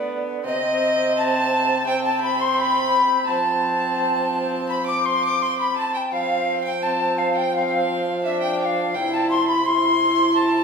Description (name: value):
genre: classical, renaissance-style consort dance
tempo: 85 BPM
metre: 4/4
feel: straight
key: unclear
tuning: A4 = 440 Hz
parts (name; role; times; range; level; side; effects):
- alto recorder; melody; 0.0-10.6 s; Eb5 to D6; -21 LUFS; left 2 dB; none
- warm violin; second line; 0.0-10.6 s; Eb5 to D6; -27 LUFS; right 4 dB; none
- warm viola; accompaniment; 0.0-10.6 s; B3 to E4; -26 LUFS; equal; none
- mellow bassoon; bass; 0.0-10.6 s; C3 to F3; -27 LUFS; right 2 dB; none
room: wet recital hall reverb, RT60 1.6 s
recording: recorded in a church or concert hall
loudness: -18 LUFS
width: side -5 dB against mid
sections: 0.0-10.6 A section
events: none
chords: 0.5 Cm; 3.3 F; 8.9 C